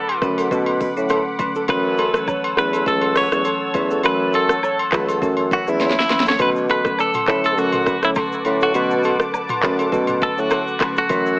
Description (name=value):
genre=afrobeats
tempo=102 BPM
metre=4/4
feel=swing 55% on 16ths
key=B minor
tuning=A4 = 440 Hz
part: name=direct-recorded clean electric guitar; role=melody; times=0.0-11.4 s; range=E4 to C#5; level=-21 LUFS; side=equal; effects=digital delay
part: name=warm analog pad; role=sustained chords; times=0.0-11.4 s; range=B4 to E6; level=-29 LUFS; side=equal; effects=chorus
part: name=flamenco guitar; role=riff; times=0.0-11.2 s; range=A4 to D5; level=-26 LUFS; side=right 2 dB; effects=digital delay
part: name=agogo bells and woodblock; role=percussion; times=0.1-11.2 s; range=none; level=-26 LUFS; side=left 2 dB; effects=none
part: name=marimba with medium mallets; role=accompaniment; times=0.2-11.4 s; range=D3 to C#4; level=-27 LUFS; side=left 1 dB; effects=none
part: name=mellow bassoon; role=bass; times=0.2-11.4 s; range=C#2 to B2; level=-20 LUFS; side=equal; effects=none
part: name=afro-pop drum kit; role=drums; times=0.2-11.4 s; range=handclaps, hi-hat, kick drum, rim click, shaker, snare drum, toms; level=-24 LUFS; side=equal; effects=vintage 12-bit sampler grit
room=light reverb, studio reverb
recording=AM radio sound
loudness=-16 LUFS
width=side -23 dB against mid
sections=0.0-6.4 A section; 6.4-11.4 B section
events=drum fill 5.8-6.4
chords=0.0 Bm7; 1.7 F#m7; 6.4 Bm7